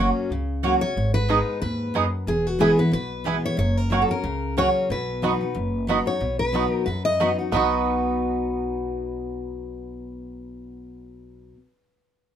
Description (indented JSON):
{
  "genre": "bluegrass",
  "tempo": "183 BPM",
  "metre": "4/4",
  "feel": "swing 56% on 8ths",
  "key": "B major",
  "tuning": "A4 = 439 Hz",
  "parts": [
    { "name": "picked steel-string acoustic guitar", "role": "accompaniment", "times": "0.0-11.6 s", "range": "E2 to F#4", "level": "-26 LUFS", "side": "left 2 dB", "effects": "none" },
    { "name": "mandolin", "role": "stabs", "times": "0.0-11.6 s", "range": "A#3 to B5", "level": "-25 LUFS", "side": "right 7 dB", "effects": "none" },
    { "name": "upright bass", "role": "bass", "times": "0.0-11.5 s", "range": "E1 to F#2", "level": "-29 LUFS", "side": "equal", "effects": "none" },
    { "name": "picked steel-string acoustic guitar", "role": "melody", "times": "0.8-11.5 s", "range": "F#4 to D#5", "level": "-26 LUFS", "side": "left 1 dB", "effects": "none" },
    { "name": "bluegrass banjo", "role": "melody", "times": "1.3-11.6 s", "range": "B3 to G#4", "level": "-28 LUFS", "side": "right 5 dB", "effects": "none" }
  ],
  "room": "moderate studio ambience, RT60 0.5 s",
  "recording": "minimal, uncompressed stereo recording",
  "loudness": "-21 LUFS",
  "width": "side -9 dB against mid",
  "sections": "0.0-6.2 A section; 6.2-7.5 B section; 7.5-10.2 C section",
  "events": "none",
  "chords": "0.0 F#; 1.0 G#madd9; 2.3 E; 3.6 F#; 4.9 B",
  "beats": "0.31 0.64 | 0.96 1.29 1.62 1.95 | 2.28 2.61 2.93 3.26 | 3.59 3.92 4.25 4.57 | 4.90 5.23 5.56 5.89 | 6.21 6.54 6.87 7.20 | 7.53 7.86 8.18 8.51 | 8.84 9.17 9.50 9.83"
}